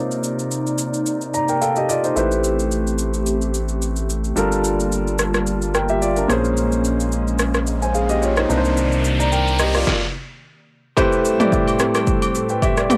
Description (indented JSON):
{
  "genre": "amapiano",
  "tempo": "109 BPM",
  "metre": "4/4",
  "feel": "swing 55% on 16ths",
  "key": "A phrygian",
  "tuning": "A4 = 439 Hz",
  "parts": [
    { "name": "warm grand piano", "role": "accompaniment", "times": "0.0-13.0 s", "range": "Bb2 to Bb5", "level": "-23 LUFS", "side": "equal", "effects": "low-pass filter" },
    { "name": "hollow soft pad", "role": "sustained chords", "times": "0.0-13.0 s", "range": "A2 to A5", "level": "-28 LUFS", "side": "equal", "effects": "chorus, low-pass filter" },
    { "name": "deep house drum kit", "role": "drums", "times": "0.1-13.0 s", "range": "kick drum, rim click, shaker, snare drum, toms", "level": "-25 LUFS", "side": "equal", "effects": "cassette tape" },
    { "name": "round analog bass", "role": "bass", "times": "2.2-9.8 s", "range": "G1 to C2", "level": "-25 LUFS", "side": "equal", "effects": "none" },
    { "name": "riser", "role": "sound effects", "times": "7.7-9.9 s", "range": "none", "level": "-30 LUFS", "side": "equal", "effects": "none" },
    { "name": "mallet-like synth pluck", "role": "stabs", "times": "11.0-13.0 s", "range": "C4 to B4", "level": "-28 LUFS", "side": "equal", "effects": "chorus, analog delay" },
    { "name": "agogo bells and woodblock", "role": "percussion", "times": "11.0-13.0 s", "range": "none", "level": "-29 LUFS", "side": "equal", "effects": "none" }
  ],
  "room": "light reverb",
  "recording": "home recording on cassette",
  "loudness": "-20 LUFS",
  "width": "mono",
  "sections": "0.0-11.0 A section; 11.0-13.0 B section",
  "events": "filter sweep 0.0-11.0; grand piano fill 1.1-2.2; riser 7.7-11.0; stop 9.9-11.0",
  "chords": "0.0 Cm9; 2.2 Am9; 4.4 Gm9; 6.3 Bbm9; 8.5 Cm9; 11.0 Am9",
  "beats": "0.51 1.06 1.61 | 2.17 2.71 3.27 3.82 | 4.37 4.92 5.47 6.02 | 6.57 7.12 7.67 8.22 | 8.77 9.32 9.87 10.42 | 10.97 11.52 12.07 12.62"
}